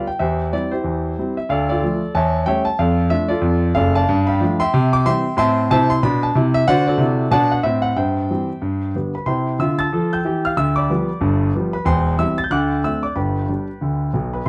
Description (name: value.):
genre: jazz, stride piano.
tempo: 185 BPM.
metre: 4/4.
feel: swing 60% on 8ths.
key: C major.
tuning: A4 = 435 Hz.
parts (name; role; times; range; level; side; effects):
clear grand piano; solo; 0.0-14.5 s; E1 to A6; -19 LUFS; equal; none.
room: light reverb.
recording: dark, warm production.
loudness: -19 LUFS.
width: mono.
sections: 0.0-9.3 A section; 9.3-14.5 B section.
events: none.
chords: 0.2 C/E; 1.5 Dm; 2.1 A7/E; 2.8 Dm/F; 4.1 G9; 4.7 C; 5.4 Am; 6.7 D7; 8.0 C/G; 8.6 G; 9.3 C; 10.6 G7/D; 11.9 C/E; 12.5 D7; 13.2 G.